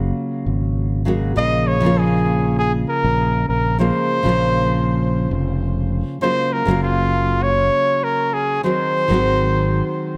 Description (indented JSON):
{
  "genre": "sunset chillout",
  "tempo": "99 BPM",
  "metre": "4/4",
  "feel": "straight",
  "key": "Bb minor",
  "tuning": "A4 = 440 Hz",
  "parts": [
    { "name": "nylon-string guitar", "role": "accompaniment", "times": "0.0-10.2 s", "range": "Db3 to Gb4", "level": "-24 LUFS", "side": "equal", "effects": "tape echo" },
    { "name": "fretless electric bass", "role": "bass", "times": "0.0-9.8 s", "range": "F1 to Bb1", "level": "-22 LUFS", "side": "equal", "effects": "none" },
    { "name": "warm flugelhorn", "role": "melody", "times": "1.4-10.2 s", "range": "F4 to Eb5", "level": "-22 LUFS", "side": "equal", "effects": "delay" }
  ],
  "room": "light reverb, studio reverb",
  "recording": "none",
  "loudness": "-19 LUFS",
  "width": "mono",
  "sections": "0.0-10.2 A section",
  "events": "none",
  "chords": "0.0 Gbmaj9; 1.4 Bbm7; 6.2 Gbmaj9; 8.6 Ab7",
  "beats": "0.16 0.77 | 1.37 1.98 2.58 3.19 | 3.80 4.40 5.01 5.62 | 6.22 6.83 7.43 8.04 | 8.64 9.25 9.86"
}